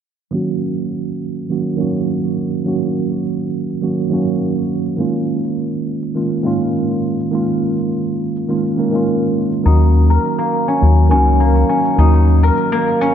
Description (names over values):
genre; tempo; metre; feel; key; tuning
organic downtempo; 103 BPM; 4/4; straight; Eb minor; A4 = 440 Hz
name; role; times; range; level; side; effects
mellow tine electric piano; accompaniment; 0.3-13.1 s; Eb3 to Bb4; -17 LUFS; right 3 dB; medium stereo tremolo, low-pass filter, ping-pong delay
cabasa; drums; 0.3-13.1 s; none; -59 LUFS; equal; none
guzheng; arpeggios; 9.7-13.1 s; Bb3 to Bb4; -16 LUFS; left 2 dB; ping-pong delay
round analog bass; bass; 9.7-12.5 s; Db2 to Eb2; -11 LUFS; left 1 dB; none
room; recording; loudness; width
moderate plate reverb, RT60 2.5 s; bright 1980s-style digital production, low-pass filter; -14 LUFS; side -9 dB against mid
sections
0.3-13.1 A section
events
filter sweep on tine electric piano 0.3-13.1; filter sweep 0.3-13.1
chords
0.3 Ebm7; 5.0 Db69; 9.7 Ebm7